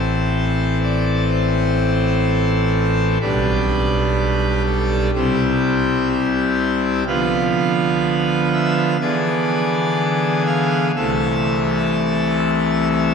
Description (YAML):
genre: classical, chorale-style piece for pipe organ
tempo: 62 BPM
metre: 4/4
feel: rubato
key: A minor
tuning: A4 = 439 Hz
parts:
  - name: pipe organ, full organ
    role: solo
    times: 0.0-13.1 s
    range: A1 to F5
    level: -16 LUFS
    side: equal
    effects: none
room: wet church reverb, RT60 3.0 s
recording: none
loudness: -16 LUFS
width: side -6 dB against mid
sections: 0.0-13.1 A section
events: none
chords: 0.0 Am; 3.2 G/B; 5.2 C; 7.1 Bdim/D; 9.0 E7/D; 11.0 Am/C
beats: 0.34 1.30 2.26 | 3.22 4.18 5.15 6.11 | 7.07 8.04 9.00 9.97 | 10.95 11.94 12.92